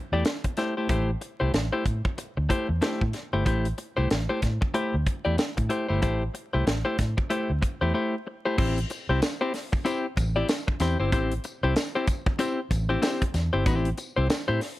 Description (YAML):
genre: funk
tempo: 94 BPM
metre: 4/4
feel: swing 60% on 16ths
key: A minor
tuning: A4 = 440 Hz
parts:
  - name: clean electric guitar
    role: accompaniment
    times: 0.1-14.7 s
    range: A3 to D5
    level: -28 LUFS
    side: left 2 dB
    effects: plate reverb
  - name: vintage muted fingered electric bass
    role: bass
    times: 0.1-14.6 s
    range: G1 to A2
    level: -26 LUFS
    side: equal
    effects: none
  - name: crisp fusion drum kit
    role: drums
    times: 0.2-14.8 s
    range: crash cymbal, hi-hat, kick drum, snare drum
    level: -27 LUFS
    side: equal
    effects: none
  - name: tambourine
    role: percussion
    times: 8.9-14.5 s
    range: none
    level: -43 LUFS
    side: left 4 dB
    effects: none
room: light reverb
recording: vinyl crackle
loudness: -24 LUFS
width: side -16 dB against mid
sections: 0.0-8.6 A section; 8.6-14.8 B section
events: none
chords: 0.0 Am7